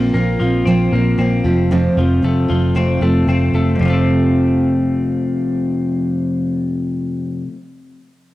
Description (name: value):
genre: indie pop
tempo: 115 BPM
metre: 4/4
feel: straight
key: F major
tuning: A4 = 442 Hz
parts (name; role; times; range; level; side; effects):
- picked steel-string acoustic guitar; accompaniment; 0.0-7.6 s; F2 to F4; -20 LUFS; right 3 dB; none
- twelve-string electric guitar; arpeggios; 0.0-7.6 s; F2 to C4; -18 LUFS; left 3 dB; spring reverb
- picked electric bass; bass; 0.0-7.4 s; F1 to Bb1; -18 LUFS; equal; none
room: light reverb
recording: dry, gritty hardware recording, cassette tape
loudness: -14 LUFS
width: side -16 dB against mid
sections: 0.0-3.8 A section; 3.8-8.0 B section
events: none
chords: 0.0 Bbsus2; 1.4 F